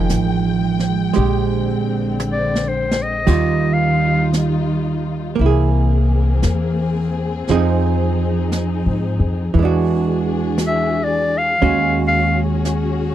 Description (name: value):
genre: jazz ballad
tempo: 57 BPM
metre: 4/4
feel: swing 67% on 8ths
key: unclear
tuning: A4 = 440 Hz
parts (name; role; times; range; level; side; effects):
- archtop guitar, miked and amplified; accompaniment; 0.0-13.1 s; Eb3 to Bb4; -20 LUFS; right 7 dB; none
- warm symphonic string section; sustained chords; 0.0-13.1 s; D3 to G5; -24 LUFS; left 4 dB; none
- upright bass; bass; 0.0-13.1 s; A1 to Ab2; -20 LUFS; left 1 dB; none
- jazz brush drum kit; drums; 0.1-13.1 s; brushed snare drum, crash cymbal, hi-hat, kick drum, snare drum, toms; -23 LUFS; equal; none
- breathy clarinet; melody; 2.3-4.3, 10.7-12.4 s; C5 to F5; -18 LUFS; left 2 dB; none
room: little or no reverb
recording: dry, close 1970s-style studio recording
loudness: -15 LUFS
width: side -12 dB against mid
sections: 0.0-13.1 A section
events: clarinet solo 0.0-13.1; drum fill 2.2-3.3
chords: 0.0 Fm11; 1.2 Bb13; 3.3 Ebadd9; 5.4 Caug7; 7.5 Fm7; 9.5 E9; 11.6 Ebm11